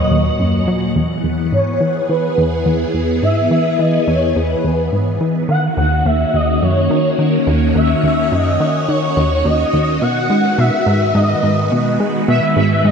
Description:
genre	ambient, sequencer-driven space music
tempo	106 BPM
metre	4/4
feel	straight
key	unclear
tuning	A4 = 438 Hz
part	expressive portamento lead	melody	0.0-12.9 s	B4 to F#5	-18 LUFS	equal	ensemble chorus, analog delay
part	phased string machine	sustained chords	0.0-12.9 s	A#2 to A#5	-18 LUFS	equal	ensemble chorus, phaser
part	plucky analog bass	riff	0.0-12.9 s	D#2 to G#3	-17 LUFS	equal	analog delay
part	analog drone	bass	0.0-0.9 s	D#2	-27 LUFS	equal	none
part	bubbling stepped-filter texture	texture	0.0-1.0 s	C#4 to C#5	-37 LUFS	right 1 dB	none
room	wet spring reverb, RT60 2.7 s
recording	echo-heavy mix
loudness	-13 LUFS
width	side -6 dB against mid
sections	1.0-12.9 A section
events	none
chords	0.0 D#m; 1.0 E; 5.5 D#m7; 10.0 G#m7

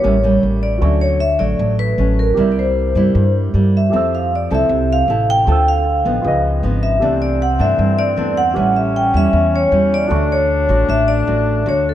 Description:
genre	bossa nova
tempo	155 BPM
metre	4/4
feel	straight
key	D major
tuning	A4 = 440 Hz
part	vibraphone with medium hard mallets	melody	0.0-11.9 s	A4 to G5	-17 LUFS	equal	none
part	nylon-string guitar	accompaniment	0.0-11.9 s	G2 to A4	-20 LUFS	right 1 dB	none
part	warm baby grand piano	accompaniment	0.0-11.9 s	F4 to E6	-28 LUFS	right 4 dB	none
part	upright bass	bass	0.0-11.9 s	G#1 to G2	-18 LUFS	equal	none
part	warm duduk	second line	7.0-11.9 s	C4 to D4	-23 LUFS	left 5 dB	none
room	light reverb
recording	none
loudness	-13 LUFS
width	side -12 dB against mid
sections	0.8-11.9 A section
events	none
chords	0.0 A7b9; 0.8 Dmaj7; 2.4 C7; 3.9 Fmaj7; 5.5 Dm7; 6.2 C#9; 7.0 C69; 8.6 A7; 10.1 Dmaj7

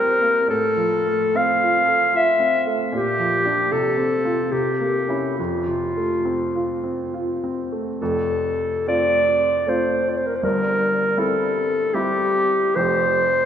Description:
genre	classical, romantic duo for clarinet and grand piano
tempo	66-83 BPM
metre	3/4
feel	rubato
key	F major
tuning	A4 = 439 Hz
part	clear clarinet	melody	0.0-13.5 s	F4 to F5	-19 LUFS	left 1 dB	none
part	clear grand piano	accompaniment	0.0-13.5 s	F1 to A4	-24 LUFS	right 1 dB	none
room	wet church reverb, RT60 3.5 s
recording	recorded in a church or concert hall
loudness	-18 LUFS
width	side -9 dB against mid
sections	0.0-8.0 A section; 8.0-13.5 B section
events	none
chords	0.5 F/A; 2.9 Gm7/Bb; 3.7 F/C; 4.5 C7b9; 5.4 F; 10.4 C7/G; 12.8 F5

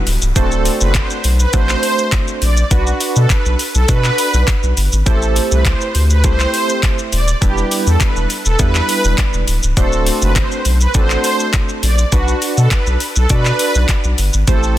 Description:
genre	dance-pop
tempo	102 BPM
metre	4/4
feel	straight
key	unclear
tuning	A4 = 440 Hz
part	saturated sub bass	bass	0.0-14.8 s	C#1 to B2	-14 LUFS	equal	sidechain pumping
part	downlifter	sound effects	0.0-2.7 s	none	-39 LUFS	left 1 dB	none
part	smooth R&B drum kit	drums	0.1-14.8 s	handclaps, hi-hat, kick drum, shaker	-17 LUFS	equal	none
part	supersaw pad	melody	0.4-14.6 s	F#4 to D5	-21 LUFS	right 1 dB	sidechain pumping, dub echo
part	chorused retro synth keys	accompaniment	0.4-14.8 s	G3 to D5	-21 LUFS	right 2 dB	tremolo, sidechain pumping
room	digital ambience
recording	dense, heavily limited modern master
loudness	-12 LUFS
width	side -13 dB against mid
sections	0.0-14.8 A section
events	none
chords	0.4 D7; 2.7 Bm; 5.1 Am7; 7.4 Em7; 9.8 D7; 12.1 Bm

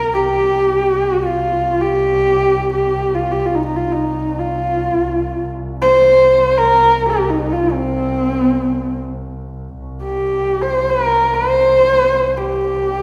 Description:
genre	mongolian traditional, Mongolian folk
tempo	free time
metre	none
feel	none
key	C yu mode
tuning	A4 = 439 Hz
part	rich horsehead fiddle	melody	0.0-13.0 s	C4 to C5	-16 LUFS	equal	none
part	rich double bass	drone	0.0-13.0 s	C2	-27 LUFS	equal	none
room	wet recital hall reverb, RT60 1.7 s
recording	recorded in a church or concert hall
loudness	-16 LUFS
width	mono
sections	0.0-9.8 A section; 9.8-13.0 A section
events	none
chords	none

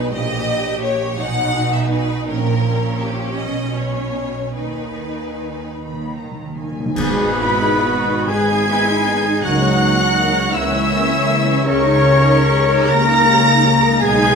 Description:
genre	classical, slow romantic movement for symphony orchestra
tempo	44-58 BPM (dotted quarters)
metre	6/8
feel	rubato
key	G# minor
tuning	A4 = 437 Hz
part	rich symphonic violin section	melody	0.0-14.4 s	G5 to A#6	-23 LUFS	left 1 dB	none
part	bright symphonic violin section	second line	0.0-14.4 s	G4 to A#5	-23 LUFS	left 3 dB	none
part	bright symphonic viola section	accompaniment	0.0-14.4 s	A#3 to C#5	-24 LUFS	right 1 dB	none
part	rich symphonic cello section	bass	0.1-14.4 s	A#2 to A#4	-25 LUFS	right 3 dB	none
part	rich symphonic double bass section	bass	0.1-14.4 s	G#1 to D#2	-21 LUFS	right 2 dB	none
part	timpani	percussion	5.8-6.9 s	D#3	-27 LUFS	left 1 dB	none
part	mellow oboe	second line	7.0-14.4 s	B3 to A#4	-22 LUFS	right 1 dB	none
part	mellow small flute group	second line	7.0-14.4 s	B4 to A#5	-21 LUFS	equal	none
part	dark French horn section	sustained chords	7.0-14.4 s	B2 to A#3	-20 LUFS	left 4 dB	none
part	clash cymbals and concert bass drum	percussion	7.0-8.6 s	none	-30 LUFS	equal	none
room	moderate concert hall reverb, RT60 2.0 s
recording	none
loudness	-14 LUFS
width	side -5 dB against mid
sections	0.0-7.0 A section; 7.0-14.4 B section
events	timpani fill 5.8-7.0; band accent 7.0-7.9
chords	0.1 D#/A#; 1.2 G#m/B; 2.3 A#m6; 3.4 G#m/B; 4.6 G#m/D#; 7.0 G#m; 9.4 A#dim/C#; 11.7 D#7/C#

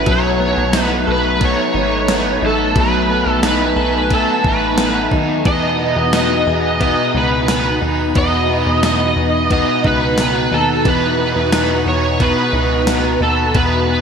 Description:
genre	dream pop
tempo	89 BPM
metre	4/4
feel	straight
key	unclear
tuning	A4 = 438 Hz
part	overdriven slide guitar	melody	0.0-14.0 s	A4 to D#5	-18 LUFS	right 1 dB	ensemble chorus
part	overdriven semi-hollow guitar	accompaniment	0.0-14.0 s	B2 to G#4	-23 LUFS	right 2 dB	harmonic tremolo, ensemble chorus
part	string machine, violas	sustained chords	0.0-14.0 s	B2 to G#5	-22 LUFS	equal	ensemble chorus
part	direct-recorded clean electric guitar	arpeggios	0.0-14.0 s	F#3 to A4	-21 LUFS	left 2 dB	wide subtle chorus, ping-pong delay
part	plucky analog bass	bass	0.0-14.0 s	G#1 to E2	-22 LUFS	equal	none
part	drifting glass-harmonics texture	texture	0.0-14.0 s	B4 to C#6	-29 LUFS	right 2 dB	chorus, built-in reverb, ping-pong delay
part	gated 80s digital drum machine	drums	0.1-13.7 s	kick drum, ride cymbal, snare drum, tambourine	-19 LUFS	equal	gated reverb, gated reverb snare
room	moderate lush hall reverb, RT60 1.9 s, digital ambience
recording	bright 1980s-style digital production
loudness	-13 LUFS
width	side -6 dB against mid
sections	0.0-14.0 A section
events	none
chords	0.1 B7; 5.5 Emaj7

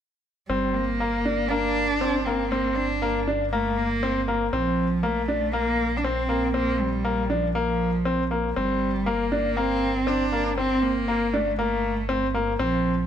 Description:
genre	piano and strings electronica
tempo	119 BPM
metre	4/4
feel	straight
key	unclear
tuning	A4 = 440 Hz
part	dark cello	melody	0.5-13.1 s	F3 to D4	-26 LUFS	right 2 dB	ping-pong delay
part	bright concert grand piano	riff	0.5-12.9 s	Bb3 to D4	-25 LUFS	left 2 dB	ping-pong delay
part	round analog bass	bass	0.5-13.1 s	G1 to Bb1	-32 LUFS	right 1 dB	none
room	moderate echo chamber reverb, RT60 1.5 s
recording	none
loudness	-22 LUFS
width	side -9 dB against mid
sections	0.5-13.1 A section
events	none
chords	0.5 Gm; 4.5 Bbsus2; 8.6 Gmadd9

